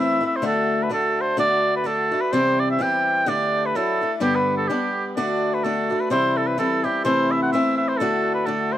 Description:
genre	celtic folk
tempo	127 BPM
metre	2/4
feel	swing 55% on 8ths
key	unclear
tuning	A4 = 443 Hz
part	warm oboe	melody	0.0-8.8 s	G4 to G5	-21 LUFS	right 1 dB	tape echo
part	picked swing-style acoustic guitar	accompaniment	0.0-8.8 s	G2 to G4	-23 LUFS	left 2 dB	none
room	little or no reverb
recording	dry, close 1970s-style studio recording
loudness	-19 LUFS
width	side -12 dB against mid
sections	0.0-5.2 A section; 5.2-8.8 A section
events	none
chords	0.4 D; 2.3 C; 3.3 Dsus4; 3.8 Dadd9; 4.2 G; 5.2 D; 6.1 C; 7.1 Am/C; 8.0 D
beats	| 0.43 0.91 | 1.38 1.86 | 2.33 2.80 | 3.28 3.75 | 4.22 4.70 | 5.17 5.64 | 6.12 6.59 | 7.06 7.54 | 8.01 8.48

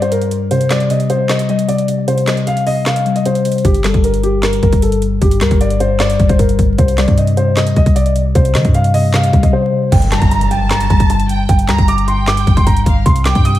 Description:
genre	hip hop, trap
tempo	153 BPM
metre	4/4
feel	half-time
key	G minor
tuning	A4 = 440 Hz
part	dark concert grand piano	melody	0.0-13.6 s	G4 to Eb6	-17 LUFS	left 1 dB	tape echo
part	muted felt-like synth keys	accompaniment	0.0-13.6 s	G2 to G3	-17 LUFS	left 2 dB	chorus
part	trap drum kit	drums	0.0-13.6 s	crash cymbal, handclaps, hi-hat, kick drum, snare drum	-15 LUFS	equal	none
part	warm 808-style bass	bass	3.6-13.6 s	G1 to Eb3	-16 LUFS	equal	none
part	impact	sound effects	9.9-11.5 s	none	-23 LUFS	equal	none
part	warm symphonic violin section	second line	10.1-13.6 s	F5 to Bb5	-24 LUFS	right 1 dB	tape echo
room	moderate plate reverb, RT60 1.3 s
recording	dreamy mix soaked in reverb, vinyl crackle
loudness	-11 LUFS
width	side -14 dB against mid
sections	0.0-9.9 A section; 9.9-13.6 B section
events	break 0.0-3.6, 9.5-9.9; impact 9.9-11.5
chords	0.0 N.C.; 0.5 C5; 3.6 Gm; 6.8 Cm; 9.9 Gm; 13.1 Cm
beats	0.12 | 0.51 0.90 1.29 1.69 | 2.08 2.47 2.86 3.25 | 3.65 4.04 4.43 4.82 | 5.22 5.61 6.00 6.39 | 6.78 7.18 7.57 7.96 | 8.35 8.74 9.14 9.53 | 9.92 10.31 10.71 11.10 | 11.49 11.88 12.27 12.67 | 13.06 13.45

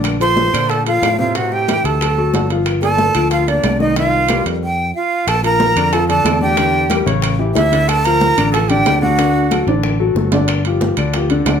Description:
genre	Afro-Cuban jazz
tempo	184 BPM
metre	4/4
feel	straight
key	G minor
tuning	A4 = 436 Hz
part	warm concert grand piano	accompaniment	0.0-11.6 s	C3 to F5	-19 LUFS	left 4 dB	none
part	sustaining fretless electric bass	bass	0.0-11.6 s	G1 to Bb2	-19 LUFS	equal	none
part	bongos	percussion	0.0-11.6 s	none	-27 LUFS	left 6 dB	none
part	congas	percussion	0.0-11.6 s	none	-24 LUFS	equal	none
part	timbales	percussion	0.0-11.6 s	none	-24 LUFS	right 9 dB	none
part	claves	percussion	0.1-11.6 s	none	-31 LUFS	left 5 dB	none
part	breathy bright jazz flute	melody	0.2-9.6 s	D5 to C6	-17 LUFS	right 1 dB	none
part	breathy bright jazz flute	second line	0.2-9.6 s	D4 to C5	-21 LUFS	right 7 dB	none
room	light reverb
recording	none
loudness	-13 LUFS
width	side -7 dB against mid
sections	0.0-5.3 A section; 5.3-11.6 B section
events	stop 4.6-5.3; drum fill 9.7-10.5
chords	0.0 Bbmaj9; 1.4 Am7; 2.0 D; 2.7 Gm9; 4.0 Cm7; 4.6 Fsus2; 5.3 Bbmaj7; 6.6 Em7b5; 7.2 A7; 7.9 Dm7; 9.2 D; 10.5 G5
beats	| 0.05 0.37 0.70 1.03 | 1.35 1.68 2.01 2.34 | 2.66 2.99 3.32 3.65 | 3.97 4.30 4.62 4.95 | 5.28 5.61 5.93 6.26 | 6.58 6.91 7.23 7.56 | 7.88 8.21 8.54 8.86 | 9.19 9.51 9.84 10.16 | 10.49 10.81 11.14 11.46

